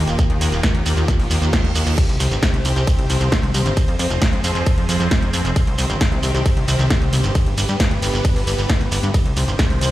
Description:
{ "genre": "uplifting trance", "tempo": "134 BPM", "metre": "4/4", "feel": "straight", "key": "C minor", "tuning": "A4 = 441 Hz", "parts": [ { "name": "supersaw pad", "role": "sustained chords", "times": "0.0-9.9 s", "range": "D3 to C5", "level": "-25 LUFS", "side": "equal", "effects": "phaser, sidechain pumping" }, { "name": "plucky analog bass", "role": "bass", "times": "0.0-9.9 s", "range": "Eb1 to G2", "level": "-19 LUFS", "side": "equal", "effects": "sidechain pumping" }, { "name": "punchy analog drum machine", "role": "drums", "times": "0.1-9.9 s", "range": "crash cymbal, hi-hat, ride cymbal, snare drum", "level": "-25 LUFS", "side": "equal", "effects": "sidechain pumping on hats, sidechain pumping on cymbals" }, { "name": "shekere", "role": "percussion", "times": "0.1-9.9 s", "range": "none", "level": "-28 LUFS", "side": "right 4 dB", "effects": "none" }, { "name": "electronic kick drum", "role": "drums", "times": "0.2-9.7 s", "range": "none", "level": "-18 LUFS", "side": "equal", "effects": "overdrive" }, { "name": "reverse cymbal", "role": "sound effects", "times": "1.2-2.0 s", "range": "none", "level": "-31 LUFS", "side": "right 4 dB", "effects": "none" } ], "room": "light reverb", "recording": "played on a big sound system in a bare room, large studio reverb", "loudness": "-16 LUFS", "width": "side -15 dB against mid", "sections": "0.0-9.9 A section", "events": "reverse cymbal 1.2-2.0", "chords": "0.0 Ebadd9; 2.0 Cm; 3.8 Fm; 5.6 Cm; 7.4 G; 9.1 Cm", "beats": "| 0.19 0.64 1.08 1.53 | 1.98 2.43 2.87 3.32 | 3.77 4.22 4.67 5.11 | 5.56 6.01 6.46 6.90 | 7.35 7.80 8.25 8.70 | 9.14 9.59" }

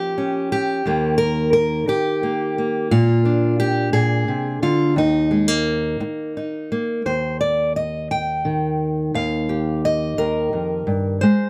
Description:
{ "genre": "folk, solo fingerstyle acoustic guitar", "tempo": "58 BPM (dotted quarters)", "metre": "6/8", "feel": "straight", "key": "Eb major", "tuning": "A4 = 440 Hz", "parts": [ { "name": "fingerpicked steel-string acoustic guitar", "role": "solo", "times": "0.0-11.5 s", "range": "Eb2 to G5", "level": "-20 LUFS", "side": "equal", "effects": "none" } ], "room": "light reverb", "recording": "close, detailed microphones", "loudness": "-20 LUFS", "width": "mono", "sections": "0.0-7.0 A section; 7.0-11.5 B section", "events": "none", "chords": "0.0 Db6; 0.8 Eb; 2.9 Bb7; 5.0 Eb5; 7.0 N.C.; 9.1 Ebadd9", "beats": "| 0.84 1.87 | 2.90 3.93 | 4.95 5.99 | 7.04 8.09 | 9.14 10.18 | 11.21" }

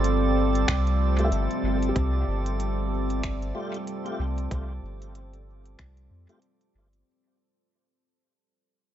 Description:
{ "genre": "ambient dub", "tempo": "94 BPM", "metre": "4/4", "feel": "swing 59% on 16ths", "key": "unclear", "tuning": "A4 = 440 Hz", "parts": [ { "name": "deep dark ambient pad", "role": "sustained chords", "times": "0.0-7.1 s", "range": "G3 to C5", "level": "-28 LUFS", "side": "equal", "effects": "chorus, built-in reverb" }, { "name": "soft dub sub bass", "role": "bass", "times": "0.0-7.0 s", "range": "G1 to F2", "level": "-26 LUFS", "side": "equal", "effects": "none" }, { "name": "organic electronic drum kit", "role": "drums", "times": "0.0-7.0 s", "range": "finger snaps, hi-hat", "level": "-34 LUFS", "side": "equal", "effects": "overdrive, dub echo" }, { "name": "drifting glass-harmonics texture", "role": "texture", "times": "0.0-7.1 s", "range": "D5", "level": "-36 LUFS", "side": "right 5 dB", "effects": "chorus, built-in reverb" }, { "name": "electronic kick drum", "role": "drums", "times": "0.7-5.9 s", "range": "none", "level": "-31 LUFS", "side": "equal", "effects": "overdrive" }, { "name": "felt-muted upright piano", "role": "arpeggios", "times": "1.2-7.1 s", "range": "G3 to E5", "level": "-38 LUFS", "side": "equal", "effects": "dub echo" }, { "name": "tonewheel organ", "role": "stabs", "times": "1.2-6.4 s", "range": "A3 to G4", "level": "-37 LUFS", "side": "left 1 dB", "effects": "overdrive, chorus vibrato, slow rotary speaker, vintage 12-bit sampler grit, dub echo" } ], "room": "light reverb", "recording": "nothing above 7.8 kHz", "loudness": "-24 LUFS", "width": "side -11 dB against mid", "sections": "0.0-7.1 A section", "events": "fade-out 0.3-7.1", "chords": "0.0 Fadd9", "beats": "0.04 0.68 1.32 | 1.96 2.60 3.23 3.87 | 4.51 5.15 5.79 6.42" }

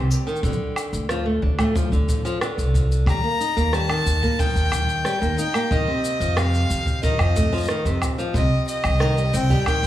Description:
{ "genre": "folktronica", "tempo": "91 BPM", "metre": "4/4", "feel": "straight", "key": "Eb lydian", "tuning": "A4 = 439 Hz", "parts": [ { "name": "flamenco guitar", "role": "arpeggios", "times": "0.0-9.9 s", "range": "C3 to Eb4", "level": "-25 LUFS", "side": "equal", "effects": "digital delay" }, { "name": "upright bass", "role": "bass", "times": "0.0-9.9 s", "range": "C2 to F2", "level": "-22 LUFS", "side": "equal", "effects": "none" }, { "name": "electronic shaker, woodblock and rim click", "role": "drums", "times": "0.1-9.9 s", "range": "none", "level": "-29 LUFS", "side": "equal", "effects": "overdrive, studio ambience" }, { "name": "kick drum", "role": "drums", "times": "0.4-9.8 s", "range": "none", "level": "-24 LUFS", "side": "equal", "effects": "studio ambience" }, { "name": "clear violin", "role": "melody", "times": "3.1-9.9 s", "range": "Eb5 to Bb5", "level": "-25 LUFS", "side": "left 1 dB", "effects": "digital delay" } ], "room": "light reverb, studio ambience", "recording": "small room ambience", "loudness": "-19 LUFS", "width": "side -13 dB against mid", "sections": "0.0-9.9 A section", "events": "none", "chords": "0.4 Dm; 3.1 Eb; 5.7 F7(no3); 8.3 Cm", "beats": "| 0.43 1.09 1.75 2.41 | 3.07 3.73 4.39 5.05 | 5.71 6.37 7.03 7.69 | 8.35 9.01 9.66" }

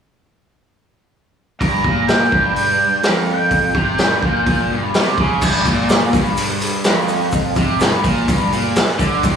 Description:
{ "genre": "garage rock duo or trio", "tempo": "126 BPM", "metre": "4/4", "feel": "straight", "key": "G minor", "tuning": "A4 = 441 Hz", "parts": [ { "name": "octave-fuzz lead guitar", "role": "melody", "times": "1.6-4.7 s", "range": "F5 to Bb5", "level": "-18 LUFS", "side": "right 2 dB", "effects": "distortion, slapback echo, tape echo" }, { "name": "raw garage guitar", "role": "riff", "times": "1.6-9.4 s", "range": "F2 to D3", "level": "-18 LUFS", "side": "equal", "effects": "overdrive, slapback echo" }, { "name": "raw garage drum kit", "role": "drums", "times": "1.6-9.3 s", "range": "crash cymbal, hi-hat, kick drum, snare drum", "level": "-17 LUFS", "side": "equal", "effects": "none" }, { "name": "egg shaker", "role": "percussion", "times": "5.4-9.3 s", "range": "none", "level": "-37 LUFS", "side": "left 5 dB", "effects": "none" } ], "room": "light reverb", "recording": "live gig heard through the venue's PA, club reverb, small room reverb", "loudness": "-14 LUFS", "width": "side -7 dB against mid", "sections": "1.6-5.4 A section; 5.4-9.4 B section", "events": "none", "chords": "1.6 Gm", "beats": "| 1.61 2.09 2.57 3.04 | 3.52 4.00 4.47 4.95 | 5.43 5.90 6.38 6.86 | 7.33 7.81 8.29 8.76 | 9.24" }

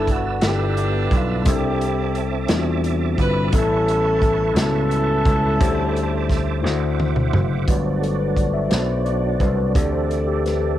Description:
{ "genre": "slow gospel", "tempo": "58 BPM (dotted quarters)", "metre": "6/8", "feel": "straight", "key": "G major", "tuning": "A4 = 440 Hz", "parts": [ { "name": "mellow horn section", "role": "melody", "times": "0.0-7.0 s", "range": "B3 to B4", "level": "-22 LUFS", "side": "equal", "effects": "cassette tape" }, { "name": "mellow tine electric piano", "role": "accompaniment", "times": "0.0-10.8 s", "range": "G2 to E5", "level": "-25 LUFS", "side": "left 8 dB", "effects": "auto-pan, cassette tape, plate reverb" }, { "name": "bright tonewheel organ", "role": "sustained chords", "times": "0.0-10.8 s", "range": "F#3 to E6", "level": "-28 LUFS", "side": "right 9 dB", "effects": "slow rotary speaker, chorus vibrato, cassette tape, plate reverb" }, { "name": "vintage slap bass", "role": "bass", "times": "0.0-10.8 s", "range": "F#1 to E2", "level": "-22 LUFS", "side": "right 1 dB", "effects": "none" }, { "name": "natural country drum kit", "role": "drums", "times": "0.1-10.6 s", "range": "hi-hat, kick drum, snare drum, toms", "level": "-22 LUFS", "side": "right 1 dB", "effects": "cassette tape" } ], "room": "light reverb", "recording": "home recording on cassette", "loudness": "-17 LUFS", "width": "side -12 dB against mid", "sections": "0.0-7.7 A section; 7.7-10.8 B section", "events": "drum fill 6.6-7.7; tine electric piano solo 7.7-10.8", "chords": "0.4 G13; 1.5 C69; 3.5 A9; 5.6 D7sus4; 6.6 D9; 7.7 Gmaj7; 9.8 D7sus4", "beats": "0.42 | 1.46 2.50 | 3.53 4.57 | 5.61 6.64 | 7.68 8.72 | 9.75" }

